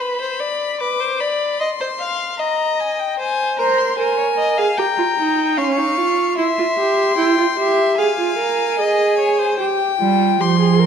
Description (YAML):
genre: classical, baroque-style fugue for string quartet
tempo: 75 BPM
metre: 4/4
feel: straight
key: F minor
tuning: A4 = 440 Hz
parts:
  - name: rich violin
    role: melody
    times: 0.0-10.9 s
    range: G5 to D6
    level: -20 LUFS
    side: left 7 dB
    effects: none
  - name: rich violin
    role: second line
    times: 0.0-9.6 s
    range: Bb4 to G5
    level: -22 LUFS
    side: left 2 dB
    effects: none
  - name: rich viola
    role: accompaniment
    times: 3.6-10.9 s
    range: Db4 to C5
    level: -18 LUFS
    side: right 5 dB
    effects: none
  - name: dark cello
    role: bass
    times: 10.0-10.9 s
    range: F3 to G3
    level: -15 LUFS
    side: right 6 dB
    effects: none
room: wet recital hall reverb, RT60 1.7 s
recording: dark, warm production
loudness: -16 LUFS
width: side -7 dB against mid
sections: 0.0-10.9 A section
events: none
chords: 0.0 Bm; 1.6 Cm; 3.2 Fm (rootless); 4.8 Gdim; 6.4 C/E; 8.0 Fm; 9.6 C5/G